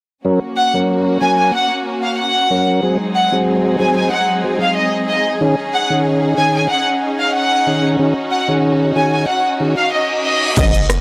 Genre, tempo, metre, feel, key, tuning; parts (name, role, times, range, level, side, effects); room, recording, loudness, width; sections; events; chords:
dancehall; 93 BPM; 4/4; straight; A4 = 440 Hz
tonewheel organ; accompaniment; 0.2-10.7 s; Eb3 to Bb4; -19 LUFS; equal; overdrive, slow rotary speaker
warm symphonic string section; sustained chords; 0.2-11.0 s; Gb3 to Ab4; -23 LUFS; equal; sidechain pumping
warm studio violin section; melody; 0.6-10.7 s; Eb5 to Ab5; -19 LUFS; equal; tape echo
reverse cymbal and impact; sound effects; 9.7-11.0 s; -25 LUFS; equal
hard-hitting 808-style bass; bass; 10.6-11.0 s; Gb1; -20 LUFS; equal
deep house drum kit; drums; 10.6-11.0 s; crash cymbal, hi-hat, kick drum, rim click, shaker; -18 LUFS; equal; overdrive
little or no reverb; dry, gritty hardware recording, transformer saturation; -16 LUFS; mono
0.2-10.6 A section
reverse cymbal 9.7-10.6; impact 10.6-11.0
0.2 Gb; 2.8 Ab7; 5.4 Dbsus2